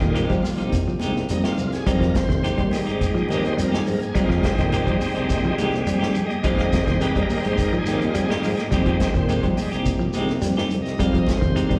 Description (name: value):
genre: afrobeat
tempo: 105 BPM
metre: 4/4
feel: straight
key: F minor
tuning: A4 = 440 Hz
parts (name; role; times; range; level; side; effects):
- bright tonewheel organ; accompaniment; 0.0-11.8 s; G3 to F5; -30 LUFS; equal; slow rotary speaker, overdrive, slapback echo
- semi-hollow electric guitar; arpeggios; 0.0-11.8 s; Eb3 to G3; -29 LUFS; equal; warbly pitch drift, slapback echo
- warm tuba; bass; 0.0-11.8 s; C2 to F3; -27 LUFS; equal; none
- vintage drum kit; drums; 0.0-11.8 s; hi-hat, kick drum, snare drum; -28 LUFS; equal; none
- shekere; percussion; 0.0-11.8 s; none; -35 LUFS; equal; none
- clean electric guitar; stabs; 0.1-11.7 s; Ab3 to G4; -30 LUFS; equal; tremolo, slapback echo
- congas; percussion; 0.4-11.6 s; none; -32 LUFS; equal; slapback echo
room: light reverb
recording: live gig heard through the venue's PA, recital hall reverb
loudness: -22 LUFS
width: mono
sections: 0.0-11.8 A section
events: tonewheel organ solo 0.0-11.8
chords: 0.0 Fm9